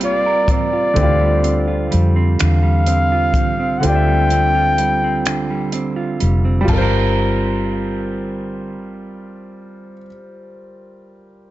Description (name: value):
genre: slow six-eight R&B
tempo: 42 BPM (dotted quarters)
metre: 6/8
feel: straight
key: G minor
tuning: A4 = 439 Hz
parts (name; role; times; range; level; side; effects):
- warm flugelhorn; melody; 0.0-5.7 s; D5 to G5; -18 LUFS; left 1 dB; slapback echo
- clean electric guitar; second line; 0.0-10.3 s; D3 to Bb4; -22 LUFS; right 4 dB; none
- clear grand piano; accompaniment; 0.0-11.5 s; D3 to A5; -24 LUFS; left 1 dB; none
- rich symphonic string section; sustained chords; 0.0-0.9 s; C3 to G4; -33 LUFS; equal; none
- vintage muted fingered electric bass; bass; 0.0-10.0 s; F1 to F2; -17 LUFS; equal; none
- compact cocktail drum kit; drums; 0.0-6.9 s; crash cymbal, finger snaps, hi-hat, kick drum; -22 LUFS; equal; none
room: small room ambience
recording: dark, warm production, nothing above 7.9 kHz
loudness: -14 LUFS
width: side -15 dB against mid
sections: 0.0-6.7 A section; 6.7-9.5 B section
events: kick muted 3.8-6.7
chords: 0.0 Gm11; 1.0 Dm11; 6.7 Gm11